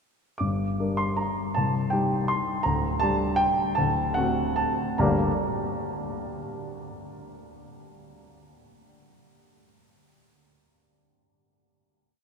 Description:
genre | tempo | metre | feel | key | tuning
classical, piano waltz | 136-174 BPM | 3/4 | rubato | G minor | A4 = 440 Hz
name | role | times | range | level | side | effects
warm concert grand piano | solo | 0.4-5.3 s | C1 to D6 | -24 LUFS | equal | none
room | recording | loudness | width
wet cathedral reverb, RT60 6.1 s | in a vast, echoing space | -23 LUFS | side -6 dB against mid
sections
0.4-5.0 A section; 5.0-6.2 final chord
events
slowing down 2.1-5.0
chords
0.4 Gm; 1.6 Cm; 2.6 Gm/D; 3.8 D7; 5.0 Gm

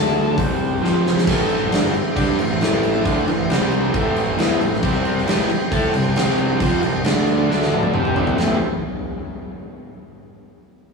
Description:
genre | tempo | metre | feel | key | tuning
blues rock power trio and southern rock | 135 BPM | 4/4 | straight | A minor | A4 = 440 Hz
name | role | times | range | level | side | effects
overdriven tonewheel organ | sustained chords | 0.0-8.7 s | A3 to D5 | -28 LUFS | right 4 dB | chorus vibrato
fuzz guitar | riff | 0.0-8.6 s | F2 to C5 | -20 LUFS | equal | distortion
fuzz picked electric bass | bass | 0.0-8.6 s | F1 to C3 | -26 LUFS | equal | overdrive
huge arena drum kit | drums | 0.4-8.5 s | crash cymbal, hi-hat, kick drum, snare drum, toms | -21 LUFS | left 1 dB | none
room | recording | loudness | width
wet studio reverb, RT60 0.6 s | rough rehearsal-room recording, small room reverb | -16 LUFS | side -4 dB against mid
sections
0.0-1.3 A section; 1.3-8.4 B section; 8.4-10.2 C section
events
drum fill 0.8-1.3, 7.5-8.4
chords
0.4 C5; 0.8 F5; 1.3 Am; 3.5 C5; 3.9 Am; 4.8 C5; 7.1 D5; 7.9 C5; 8.4 Am

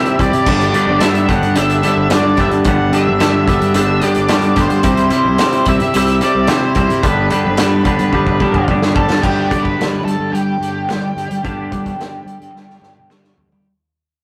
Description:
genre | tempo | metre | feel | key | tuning
indie rock | 109 BPM | 4/4 | straight | G major | A4 = 440 Hz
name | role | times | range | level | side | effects
octave-fuzz lead guitar | melody | 0.0-13.1 s | G4 to F#5 | -22 LUFS | equal | distortion
twangy electric guitar | riff | 0.0-13.7 s | G2 to G4 | -19 LUFS | equal | none
fuzz fingered electric bass | bass | 0.0-13.6 s | G1 to G3 | -20 LUFS | equal | overdrive
loose indie drum kit | drums | 0.1-13.7 s | crash cymbal, hi-hat, kick drum, snare drum, toms | -21 LUFS | equal | none
room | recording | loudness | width
moderate studio reverb, RT60 0.5 s | rough rehearsal-room recording, warm saturation | -14 LUFS | mono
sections
0.0-9.2 A section; 9.2-13.7 B section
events
drum fill 8.1-9.2, 12.6-13.7; fade-out 9.2-13.7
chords
0.5 G; 4.8 C; 7.0 G

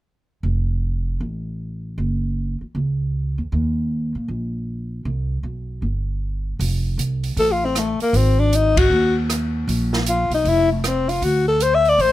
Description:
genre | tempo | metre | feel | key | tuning
jazz, small-group swing and bop | 156 BPM | 4/4 | swing 64% on 8ths | unclear | A4 = 440 Hz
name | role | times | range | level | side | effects
upright bass | bass | 0.4-12.1 s | F1 to Bb2 | -21 LUFS | right 1 dB | none
open jazz drum kit | drums | 6.6-12.1 s | hi-hat, kick drum, ride cymbal, rim click, snare drum | -26 LUFS | right 1 dB | none
growling alto saxophone | melody | 7.4-12.1 s | A3 to E5 | -17 LUFS | left 3 dB | none
room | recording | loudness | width
little or no reverb | minimal, uncompressed stereo recording | -18 LUFS | side -14 dB against mid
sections
0.4-6.6 A section; 6.6-12.1 B section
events
stop 6.2-6.6; band accent 8.7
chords
0.4 F; 2.0 Gb5; 3.5 Eb5; 5.1 C5; 6.6 F; 8.1 Ab5; 9.7 Bb5; 11.2 D5

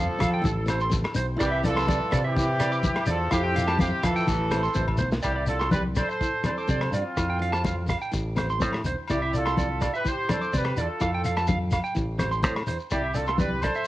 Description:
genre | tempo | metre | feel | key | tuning
highlife guitar band | 125 BPM | 4/4 | straight | C major | A4 = 441 Hz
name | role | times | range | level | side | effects
clear horn section | melody | 0.0-13.9 s | C4 to C5 | -29 LUFS | equal | cassette tape
raspy tenor saxophone | second line | 0.0-5.0 s | C3 to F3 | -36 LUFS | left 2 dB | cassette tape
picked steel-string acoustic guitar | accompaniment | 0.0-13.8 s | A3 to E4 | -36 LUFS | left 2 dB | cassette tape
electric guitar at the edge of break-up | arpeggios | 0.0-13.8 s | C5 to D6 | -30 LUFS | right 4 dB | cassette tape
fingered electric bass | bass | 0.0-13.7 s | A1 to F3 | -28 LUFS | equal | none
crunchy breakbeat drum kit | drums | 0.2-13.7 s | hi-hat, kick drum, rim click, snare drum | -31 LUFS | equal | none
agogo bells | percussion | 0.2-13.8 s | none | -37 LUFS | left 3 dB | none
congas | percussion | 0.2-13.5 s | none | -30 LUFS | left 1 dB | none
shekere | percussion | 0.2-13.9 s | none | -33 LUFS | left 2 dB | none
room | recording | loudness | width
little or no reverb | home recording on cassette | -23 LUFS | side -16 dB against mid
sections
0.0-5.2 A section; 5.2-13.9 B section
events
drum fill 4.8-5.2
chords
0.4 Am; 1.4 Cadd9; 3.3 Fadd9; 4.3 Am; 5.2 Cadd9; 7.2 Fsus2; 8.1 Am; 9.1 Cadd9; 11.0 Fadd9; 12.0 Am; 12.9 Cadd9

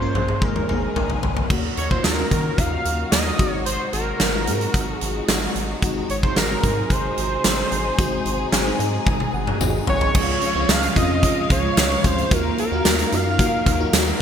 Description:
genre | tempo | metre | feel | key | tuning
1980s-style pop | 111 BPM | 4/4 | straight | unclear | A4 = 440 Hz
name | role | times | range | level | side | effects
octave-doubled lead | melody | 0.0-13.9 s | Bb4 to F5 | -25 LUFS | right 2 dB | chorus
FM electric piano with soft pad layer | accompaniment | 0.0-14.2 s | Ab3 to Bb5 | -27 LUFS | left 1 dB | chorus, phaser
warm studio string section | sustained chords | 0.0-14.2 s | Bb2 to F5 | -30 LUFS | left 2 dB | none
rubbery square bass | bass | 0.0-14.1 s | Ab1 to Eb3 | -27 LUFS | equal | none
huge arena drum kit | drums | 0.2-14.1 s | crash cymbal, hi-hat, kick drum, snare drum, tambourine, toms | -21 LUFS | equal | gated reverb
tambourine | percussion | 2.1-14.1 s | none | -36 LUFS | left 6 dB | none
crunchy overdriven guitar | accompaniment | 10.1-14.2 s | Db3 to Eb4 | -33 LUFS | equal | none
mellow synth brass | stabs | 10.1-14.2 s | F3 to Gb4 | -29 LUFS | left 1 dB | chorus
room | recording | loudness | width
moderate lush hall reverb, RT60 2.5 s | bright 1980s-style digital production | -18 LUFS | side -8 dB against mid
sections
0.0-1.5 A section; 1.5-10.2 B section; 10.2-14.2 C section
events
drum fill 0.0-1.5, 9.1-10.2; FM electric piano fill 8.5-10.2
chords
0.4 Absus2; 1.5 Ebm7; 3.4 Ab7; 10.2 Dbmaj7; 12.3 Ebmadd9

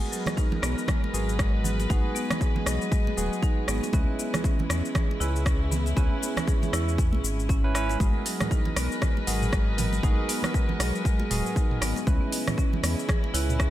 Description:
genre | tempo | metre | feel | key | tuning
afro house | 118 BPM | 4/4 | swing 59% on 16ths | G# minor | A4 = 441 Hz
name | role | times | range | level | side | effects
warm studio string section | sustained chords | 0.0-13.7 s | C#3 to D#5 | -35 LUFS | left 1 dB | sidechain pumping
barky tine electric piano | stabs | 0.0-13.7 s | B3 to B4 | -35 LUFS | right 4 dB | sidechain pumping, dub echo
marimba with medium mallets | arpeggios | 0.1-13.7 s | F#3 to G#4 | -33 LUFS | equal | sidechain pumping, dub echo
house drum kit | drums | 0.1-13.7 s | hi-hat, rim click, shaker, toms | -32 LUFS | equal | overdrive
congas | percussion | 0.3-13.7 s | none | -35 LUFS | right 4 dB | none
electronic kick drum | drums | 0.4-13.7 s | none | -25 LUFS | equal | overdrive
round analog bass | bass | 0.6-13.7 s | D#1 to E2 | -28 LUFS | equal | sidechain pumping
room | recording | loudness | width
digital ambience | none | -23 LUFS | side -13 dB against mid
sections
0.0-13.7 A section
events
none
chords
0.0 G#m7; 3.9 C#m7; 8.0 G#m7; 12.1 C#m7

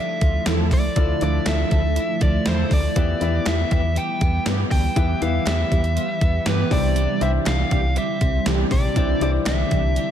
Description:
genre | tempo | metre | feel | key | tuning
1980s-style pop | 120 BPM | 4/4 | straight | unclear | A4 = 440 Hz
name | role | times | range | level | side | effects
biting lead guitar | melody | 0.0-10.1 s | B4 to G5 | -26 LUFS | left 1 dB | overdrive
warm baby grand piano | accompaniment | 0.0-10.1 s | C3 to E5 | -29 LUFS | left 6 dB | none
ethereal airy pad | sustained chords | 0.0-10.1 s | D3 to G4 | -27 LUFS | right 2 dB | ensemble chorus, built-in reverb, phaser
twelve-string electric guitar | riff | 0.0-10.1 s | E3 to G4 | -31 LUFS | right 5 dB | lush chorus
solid FM bass | bass | 0.2-10.0 s | Bb1 to G2 | -22 LUFS | equal | none
clean 12-bit digital drum machine | drums | 0.2-10.1 s | hi-hat, kick drum, snare drum, tambourine | -23 LUFS | equal | gated reverb
mellow synth brass | stabs | 0.5-9.8 s | E3 to A4 | -32 LUFS | right 1 dB | chorus, digital delay
group handclap | percussion | 0.5-9.6 s | none | -41 LUFS | right 5 dB | none
room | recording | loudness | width
light reverb, digital ambience | none | -18 LUFS | side -9 dB against mid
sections
0.0-10.1 A section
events
none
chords
0.0 Dmadd9; 3.0 Em; 6.7 Cadd9

